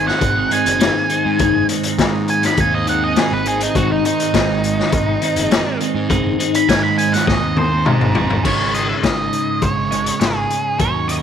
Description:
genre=psychedelic rock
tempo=102 BPM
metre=4/4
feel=straight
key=G# major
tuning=A4 = 439 Hz
part: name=octave-fuzz lead guitar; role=melody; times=0.0-11.1 s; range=D#4 to B5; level=-20 LUFS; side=right 3 dB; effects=distortion, slapback echo
part: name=twelve-string electric guitar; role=riff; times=0.0-11.2 s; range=G#2 to A#4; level=-19 LUFS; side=equal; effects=phaser
part: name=fuzz picked electric bass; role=bass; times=0.0-11.2 s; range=F#1 to G#2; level=-24 LUFS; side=right 2 dB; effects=overdrive
part: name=raw garage drum kit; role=drums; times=0.1-11.2 s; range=crash cymbal, hi-hat, kick drum, snare drum, toms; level=-19 LUFS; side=left 3 dB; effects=none
room=light reverb, small room ambience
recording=1960s-style stereo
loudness=-14 LUFS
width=side -8 dB against mid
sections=0.0-8.5 A section; 8.5-11.2 B section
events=lead electric guitar solo 0.0-8.5; drum fill 7.3-8.5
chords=0.0 G#; 8.5 G#sus4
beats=0.21 0.80 | 1.39 1.98 2.57 3.16 | 3.75 4.34 4.92 5.51 | 6.10 6.69 7.28 7.86 | 8.45 9.04 9.63 10.21 | 10.80

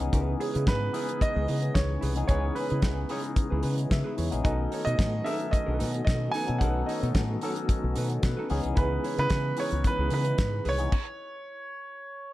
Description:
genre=disco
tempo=111 BPM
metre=4/4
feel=straight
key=C# minor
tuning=A4 = 440 Hz
part: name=barky tine electric piano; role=accompaniment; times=0.0-10.9 s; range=E3 to G#5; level=-34 LUFS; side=left 6 dB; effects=overdrive, phaser
part: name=mellow electric guitar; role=accompaniment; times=0.0-10.8 s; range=D#4 to C#5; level=-38 LUFS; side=right 4 dB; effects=spring reverb
part: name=percussive tonewheel organ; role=sustained chords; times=0.0-10.9 s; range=C#3 to F#4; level=-36 LUFS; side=right 1 dB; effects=chorus vibrato, fast rotary speaker
part: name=deep dub fingered electric bass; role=bass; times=0.0-10.9 s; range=A#1 to C#3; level=-29 LUFS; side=equal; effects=none
part: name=damped 70s drum kit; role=drums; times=0.0-11.1 s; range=crash cymbal, hi-hat, kick drum, snare drum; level=-28 LUFS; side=equal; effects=gated reverb
part: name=warm concert grand piano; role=melody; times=0.4-12.3 s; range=G#4 to G#5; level=-32 LUFS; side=right 3 dB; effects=none
room=little or no reverb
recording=none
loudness=-25 LUFS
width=side -16 dB against mid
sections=0.0-12.3 A section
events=tine electric piano fill 3.6-4.4, 8.0-8.8; stop 10.9-12.3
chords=0.0 C#m7; 4.4 B7; 8.5 C#m7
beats=| 0.13 0.67 1.21 1.75 | 2.29 2.83 3.37 3.91 | 4.45 4.99 5.53 6.07 | 6.61 7.15 7.69 8.22 | 8.77 9.30 9.85 10.38 | 10.93 11.46 12.00

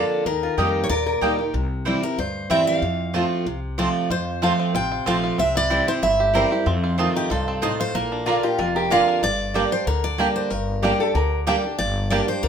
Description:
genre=bluegrass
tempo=187 BPM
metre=4/4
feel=swing 53% on 8ths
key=unclear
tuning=A4 = 440 Hz
part: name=picked steel-string acoustic guitar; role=melody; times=0.0-12.5 s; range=G4 to G5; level=-24 LUFS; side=equal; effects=none
part: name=picked steel-string acoustic guitar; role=accompaniment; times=0.0-12.5 s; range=F2 to G4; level=-24 LUFS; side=right 2 dB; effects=none
part: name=mandolin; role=stabs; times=0.0-12.2 s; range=Bb3 to Bb5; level=-26 LUFS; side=right 3 dB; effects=none
part: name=upright bass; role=bass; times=0.0-12.5 s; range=F1 to F2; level=-27 LUFS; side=left 1 dB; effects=none
part: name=lap resonator guitar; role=second line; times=0.4-1.7, 8.3-11.4 s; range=F4 to Bb4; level=-25 LUFS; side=left 3 dB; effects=none
part: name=bluegrass banjo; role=melody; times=4.1-12.2 s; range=Bb3 to Bb4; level=-28 LUFS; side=right 4 dB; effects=none
room=moderate studio reverb, RT60 0.7 s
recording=minimal, uncompressed stereo recording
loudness=-19 LUFS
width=side -7 dB against mid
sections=0.0-9.2 A section; 9.2-12.5 B section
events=none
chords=0.3 Eb; 1.5 C; 2.8 F; 5.4 C; 6.7 F7; 7.9 Bb; 9.2 Gm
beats=| 0.26 0.58 0.90 1.22 | 1.54 1.86 2.18 2.50 | 2.82 3.14 3.46 3.78 | 4.10 4.42 4.74 5.06 | 5.38 5.70 6.03 6.34 | 6.67 6.99 7.31 7.63 | 7.95 8.27 8.59 8.91 | 9.23 9.55 9.87 10.19 | 10.51 10.83 11.15 11.47 | 11.79 12.11 12.43

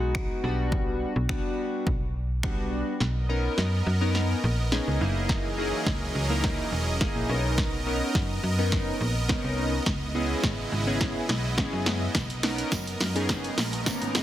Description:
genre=dance-pop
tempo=105 BPM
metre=4/4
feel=straight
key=B major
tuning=A4 = 440 Hz
part: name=chorused polysynth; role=accompaniment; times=0.0-14.2 s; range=G3 to A#4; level=-30 LUFS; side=left 1 dB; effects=sidechain pumping
part: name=slap-like FM bass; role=bass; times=0.0-14.2 s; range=E1 to F#2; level=-28 LUFS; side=equal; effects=sidechain pumping
part: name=punchy analog drum machine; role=drums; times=0.1-14.2 s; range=finger snaps, hi-hat, kick drum, snare drum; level=-28 LUFS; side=equal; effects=soft clipping on snare
part: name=supersaw pad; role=sustained chords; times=3.0-14.2 s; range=C#3 to D#5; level=-32 LUFS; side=right 2 dB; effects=sidechain pumping
part: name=tambourine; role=percussion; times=12.1-14.2 s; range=none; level=-42 LUFS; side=right 7 dB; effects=none
part: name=riser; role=sound effects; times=13.0-14.2 s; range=none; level=-37 LUFS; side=right 1 dB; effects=none
room=light reverb, digital ambience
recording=dense, heavily limited modern master, high-pass filter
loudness=-24 LUFS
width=side -12 dB against mid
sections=0.0-3.0 A section; 3.0-14.2 B section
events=build-up 3.0-14.2; drum fill 3.0-14.2; filter sweep 3.0-14.2; riser 13.0-14.2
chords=0.4 Gmaj7/B; 3.0 Bmaj9; 5.0 F#13; 7.3 Bmaj9; 9.9 C#m7; 12.2 Bmaj9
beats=0.15 | 0.72 1.29 1.86 2.44 | 3.01 3.58 4.15 4.72 | 5.29 5.87 6.44 7.01 | 7.58 8.15 8.72 9.29 | 9.87 10.44 11.01 11.58 | 12.15 12.72 13.29 13.87

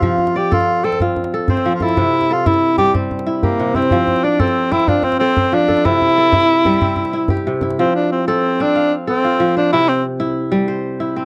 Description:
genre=west african traditional, West African string and xylophone music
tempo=124 BPM (dotted quarters)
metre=12/8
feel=straight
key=F major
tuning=A4 = 440 Hz
part: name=clear tenor saxophone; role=melody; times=0.0-10.0 s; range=Bb3 to A4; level=-18 LUFS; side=equal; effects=none
part: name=kora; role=arpeggios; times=0.0-11.2 s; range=C3 to F5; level=-21 LUFS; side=equal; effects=none
part: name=djembe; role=percussion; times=0.0-7.8 s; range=none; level=-23 LUFS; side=equal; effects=none
room=light reverb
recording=dry, close 1970s-style studio recording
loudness=-16 LUFS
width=mono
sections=0.0-7.8 A section; 7.8-11.2 B section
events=tenor saxophone solo 7.8-11.2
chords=0.0 F; 2.0 C; 3.9 F; 5.8 C; 7.8 F; 9.7 C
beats=| 0.03 0.52 1.00 1.49 | 1.97 2.46 2.94 3.42 | 3.91 4.39 4.88 5.36 | 5.85 6.33 6.82 7.30 | 7.78 8.27 8.75 9.23 | 9.71 10.19 10.68 11.16

